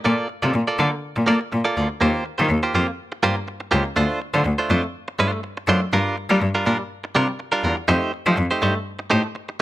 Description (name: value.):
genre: disco.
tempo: 122 BPM.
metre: 4/4.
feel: straight.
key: unclear.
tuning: A4 = 439 Hz.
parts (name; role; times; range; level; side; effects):
direct-recorded clean electric guitar; accompaniment; 0.0-9.5 s; G3 to D5; -21 LUFS; right 2 dB; none.
bright cello; bass; 0.1-9.2 s; C#2 to Bb3; -21 LUFS; left 1 dB; none.
room: light reverb.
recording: none.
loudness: -19 LUFS.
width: side -15 dB against mid.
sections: 0.0-2.0 A section; 2.0-9.6 B section.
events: none.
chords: 0.0 Bbmaj7; 2.0 Eb69; 4.0 Dm7; 5.9 Gm7; 7.9 F9 (rootless).